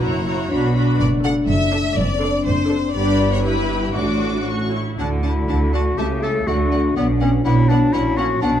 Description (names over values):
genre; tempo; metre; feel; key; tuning
quick classical-period movement for symphony orchestra; 122 BPM; 2/4; straight; D major; A4 = 435 Hz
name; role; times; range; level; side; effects
rich studio violin section; melody; 0.0-8.5 s; F#5 to D6; -32 LUFS; left 5 dB; none
clear studio violin section; second line; 0.0-8.5 s; F#4 to F#5; -27 LUFS; left 3 dB; none
rich studio viola section; accompaniment; 0.0-8.5 s; A3 to A4; -25 LUFS; right 1 dB; none
mellow French horn section; sustained chords; 0.0-8.6 s; F#3 to F#4; -24 LUFS; left 4 dB; none
rich studio cello section; bass; 0.0-8.6 s; F#2 to D3; -25 LUFS; right 1 dB; none
warm symphonic double bass section; bass; 0.0-8.6 s; F#1 to D2; -21 LUFS; right 2 dB; none
bright clarinet; second line; 5.0-8.6 s; B3 to A4; -21 LUFS; left 2 dB; none
room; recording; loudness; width
wet recital hall reverb, RT60 1.7 s; dark, warm production; -16 LUFS; side -10 dB against mid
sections
0.0-5.0 A section; 5.0-8.6 B section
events
none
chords
0.0 F#7; 0.5 Bm; 1.0 D/F#; 2.0 D7/F#; 3.0 G; 3.4 Em/G; 4.0 D/A; 4.5 A; 5.0 D; 6.0 A7/C#; 6.5 D; 7.0 Bm; 7.9 F#7/A#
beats
| 0.02 0.51 | 1.00 1.49 | 1.98 2.46 | 2.95 3.45 | 3.96 4.47 | 4.99 5.49 | 5.98 6.47 | 6.96 7.45 | 7.93 8.42